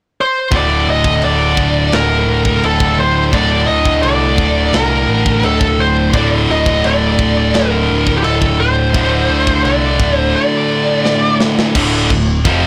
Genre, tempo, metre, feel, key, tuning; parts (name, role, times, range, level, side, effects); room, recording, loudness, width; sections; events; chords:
heavy metal; 86 BPM; 4/4; straight; A4 = 440 Hz
high-gain lead guitar; melody; 0.2-11.4 s; G4 to Eb5; -18 LUFS; equal; distortion
sludgy distorted guitar; riff; 0.5-12.7 s; D2 to F3; -22 LUFS; equal; overdrive
tight distorted guitar; riff; 0.5-12.7 s; D2 to F3; -20 LUFS; equal; distortion
overdriven picked electric bass; bass; 0.5-12.7 s; D1 to D2; -20 LUFS; equal; tube saturation
tight metal drum kit; drums; 0.5-12.6 s; china cymbal, crash cymbal, kick drum, snare drum; -22 LUFS; equal; soft clipping on kick
small room ambience; blown-out, overdriven recording, overdrive; -13 LUFS; mono
0.5-11.8 A section
drum fill 11.1-11.8
0.0 N.C.; 0.5 D5; 11.8 Dm